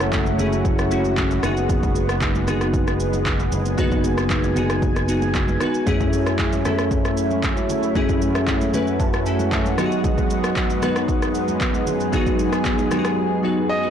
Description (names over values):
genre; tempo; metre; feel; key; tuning
amapiano; 115 BPM; 4/4; straight; unclear; A4 = 439 Hz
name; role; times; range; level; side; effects
glassy digital keys; accompaniment; 0.0-13.9 s; F#2 to A5; -22 LUFS; left 1 dB; chorus
lush unison pad; sustained chords; 0.0-13.9 s; F#2 to G#5; -25 LUFS; right 1 dB; chorus, sidechain pumping
modern bright fingered electric bass; bass; 0.0-5.6 s; F#1; -24 LUFS; equal; none
deep house drum kit; drums; 0.0-13.2 s; handclaps, kick drum, rim click, shaker; -23 LUFS; equal; vintage 12-bit sampler grit
congas; percussion; 0.3-13.0 s; none; -33 LUFS; right 3 dB; none
clear baby grand piano; melody; 13.7-13.9 s; D#5; -20 LUFS; right 1 dB; none
room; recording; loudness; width
digital ambience; blown-out, overdriven recording, overdrive; -18 LUFS; side -8 dB against mid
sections
0.0-13.9 A section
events
synth keys fill 8.5-10.0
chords
0.0 F#m9; 1.4 G#m7/F#; 5.9 F#m9; 9.8 G#m7/F#